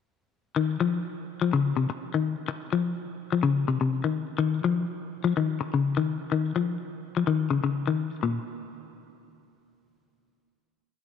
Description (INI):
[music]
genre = afrobeat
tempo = 125 BPM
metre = 4/4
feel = straight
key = unclear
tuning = A4 = 440 Hz
[part]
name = clean electric guitar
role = solo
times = 0.6-8.4 s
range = Bb2 to F3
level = -25 LUFS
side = left 6 dB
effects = none
[sound]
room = moderate plate reverb, RT60 2.9 s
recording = none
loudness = -25 LUFS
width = side -7 dB against mid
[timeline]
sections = 0.6-8.2 groove; 8.2-10.2 final note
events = none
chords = none